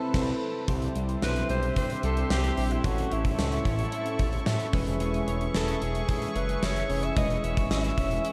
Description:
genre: 1980s-style pop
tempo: 111 BPM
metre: 4/4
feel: straight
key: unclear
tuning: A4 = 440 Hz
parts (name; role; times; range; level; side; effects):
- raspy alto saxophone; melody; 0.0-8.3 s; E4 to E5; -36 LUFS; equal; tape echo
- soft electric-piano-like synth keys; accompaniment; 0.0-8.3 s; A2 to C#5; -36 LUFS; equal; chorus, tremolo
- sweeping resonant pad; sustained chords; 0.0-8.3 s; C4 to C#6; -38 LUFS; equal; chorus
- smooth synth bass; bass; 0.1-8.2 s; E1 to A2; -33 LUFS; equal; none
- gated 80s drum kit; drums; 0.1-8.3 s; crash cymbal, hi-hat, kick drum, snare drum; -33 LUFS; equal; none
- twelve-string electric guitar; riff; 0.7-8.3 s; G3 to E4; -39 LUFS; equal; analog chorus, tape echo
- tambourine; percussion; 1.2-7.8 s; none; barely audible; none; none
room: moderate huge ambient reverb, RT60 7.4 s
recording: dreamy mix soaked in reverb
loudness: -28 LUFS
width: mono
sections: 0.7-8.3 A section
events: band accent 0.0-0.7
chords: 0.0 Amadd9/C; 0.7 C; 2.8 A; 4.7 E6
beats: 0.14 | 0.68 1.22 1.76 2.30 | 2.84 3.38 3.92 4.46 | 5.01 5.55 6.09 6.63 | 7.17 7.71 8.25

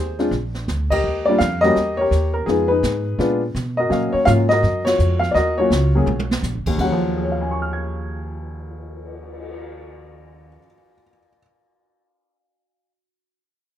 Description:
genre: jazz piano trio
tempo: 167 BPM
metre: 4/4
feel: swing 65% on 8ths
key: Eb minor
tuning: A4 = 438 Hz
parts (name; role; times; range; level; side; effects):
- warm upright piano; melody; 0.0-11.4 s; Eb2 to Ab6; -18 LUFS; left 2 dB; none
- upright bass; bass; 0.0-10.6 s; Eb1 to Cb3; -23 LUFS; right 1 dB; none
- jazz brush drum kit; drums; 0.2-9.6 s; brushed snare drum, crash cymbal, cymbal swell, hi-hat, kick drum, ride cymbal, snare drum, toms; -29 LUFS; right 2 dB; none
room: light reverb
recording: minimal, uncompressed stereo recording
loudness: -17 LUFS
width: side -11 dB against mid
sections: 0.0-6.8 A section; 6.8-9.7 B section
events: band accent 0.9, 4.8; drum fill 6.1-6.4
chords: 0.3 Bb; 1.0 Ebmaj9; 1.8 Edim7; 2.5 Fm7b5; 3.2 Bb7b9; 3.9 Ebm9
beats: 0.32 0.68 | 1.04 1.40 1.76 2.12 | 2.48 2.83 3.19 3.55 | 3.91 4.27 4.63 4.99 | 5.35 5.71 6.07 6.43 | 6.79 7.15 7.51 7.87 | 8.23 8.59 8.95 9.31

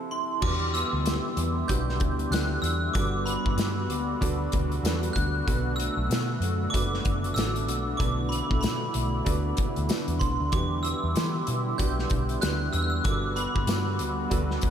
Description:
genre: indie pop, bedroom pop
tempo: 95 BPM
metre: 4/4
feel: swing 60% on 16ths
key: unclear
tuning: A4 = 437 Hz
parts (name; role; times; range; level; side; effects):
- electric guitar through a small old amp; accompaniment; 0.0-14.7 s; B2 to A4; -36 LUFS; left 3 dB; lush chorus, vibrato effect
- warm upright piano; accompaniment; 0.0-14.7 s; C4 to D5; -37 LUFS; right 5 dB; cassette tape
- glockenspiel with brass mallets; melody; 0.1-14.7 s; B5 to G6; -31 LUFS; right 2 dB; analog chorus, diffuse ambient delay
- warm analog pad; sustained chords; 0.4-14.7 s; D3 to F#4; -35 LUFS; right 1 dB; chorus
- vintage muted picked electric bass; bass; 0.4-14.7 s; F#1 to E3; -29 LUFS; equal; none
- loose indie drum kit; drums; 0.4-14.7 s; crash cymbal, hi-hat, kick drum, snare drum; -30 LUFS; equal; none
- tambourine; percussion; 1.1-13.9 s; none; -46 LUFS; left 5 dB; none
room: moderate lush hall reverb, RT60 2.9 s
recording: dreamy mix soaked in reverb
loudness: -24 LUFS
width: side -9 dB against mid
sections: 0.4-14.7 A section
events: break 0.0-0.4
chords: 0.4 Em7; 3.0 Gmaj7; 5.5 Bm7; 10.5 Em7; 13.1 Gmaj7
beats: | 0.42 1.05 1.69 2.32 | 2.95 3.58 4.21 4.84 | 5.48 6.11 6.74 7.37 | 8.00 8.63 9.27 9.90 | 10.53 11.16 11.79 12.42 | 13.05 13.69 14.32

